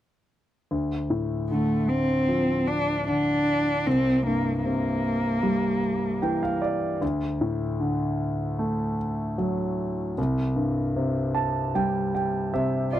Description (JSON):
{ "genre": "pop", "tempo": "76 BPM", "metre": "4/4", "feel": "straight", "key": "D minor", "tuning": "A4 = 440 Hz", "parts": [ { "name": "warm concert grand piano", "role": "accompaniment", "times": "0.7-13.0 s", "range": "C2 to A5", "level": "-25 LUFS", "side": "equal", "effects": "none" }, { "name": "warm cello", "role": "melody", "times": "1.5-6.6, 13.0 s", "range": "A3 to F4", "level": "-24 LUFS", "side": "equal", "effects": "none" } ], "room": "light reverb", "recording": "dry, close 1970s-style studio recording", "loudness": "-23 LUFS", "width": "side -12 dB against mid", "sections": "0.7-13.0 A section", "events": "grand piano fill 5.8-7.0, 11.0-13.0", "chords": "0.7 Dm7; 3.9 C7; 7.0 D; 10.2 C5" }